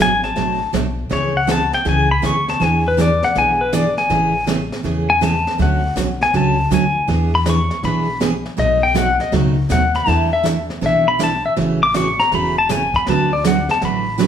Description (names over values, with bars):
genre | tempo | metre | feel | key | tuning
country, western swing | 160 BPM | 4/4 | swing 66% on 8ths | A major | A4 = 440 Hz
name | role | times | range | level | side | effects
pedal steel guitar | melody | 0.0-14.3 s | B4 to D6 | -17 LUFS | left 3 dB | none
picked steel-string acoustic guitar | accompaniment | 0.0-14.3 s | B2 to B4 | -20 LUFS | right 4 dB | none
upright bass | bass | 0.0-14.3 s | E1 to E2 | -22 LUFS | left 1 dB | none
jazz brush drum kit | drums | 0.2-14.3 s | brushed snare drum, hi-hat, kick drum, snare drum | -26 LUFS | equal | none
room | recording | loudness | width
wet large studio reverb, RT60 1.2 s | band playing live in one room | -15 LUFS | side -8 dB against mid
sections
0.0-14.3 A section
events
pedal steel guitar solo 0.0-14.3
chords
0.0 Bm7; 1.1 Amaj7/C#; 2.6 E7; 4.1 Amaj7; 5.6 Dmaj7; 7.1 E7; 8.6 B7; 10.1 E7sus4; 11.6 A6; 13.1 D6